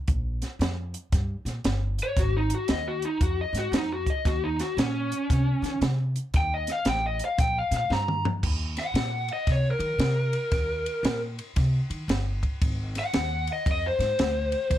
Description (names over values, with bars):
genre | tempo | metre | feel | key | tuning
electric blues shuffle | 115 BPM | 4/4 | swing 64% on 8ths | unclear | A4 = 442 Hz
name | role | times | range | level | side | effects
upright bass | bass | 0.1-14.8 s | G1 to Eb3 | -28 LUFS | equal | none
compact cocktail drum kit | drums | 0.1-14.8 s | crash cymbal, hi-hat, kick drum, ride cymbal, snare drum, toms | -28 LUFS | equal | none
lead guitar through a small cranked amp | melody | 2.0-14.8 s | Db4 to Bb5 | -28 LUFS | left 1 dB | overdrive, plate reverb
room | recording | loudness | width
light reverb | none | -24 LUFS | side -12 dB against mid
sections
0.0-8.4 A section; 8.4-14.8 A section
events
lead electric guitar solo 0.0-14.8; drum fill 7.9-8.4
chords
0.1 Bb5; 2.2 Ab5; 4.3 Eb5; 7.4 Gm7/Bb; 8.4 Eb; 12.6 Ab7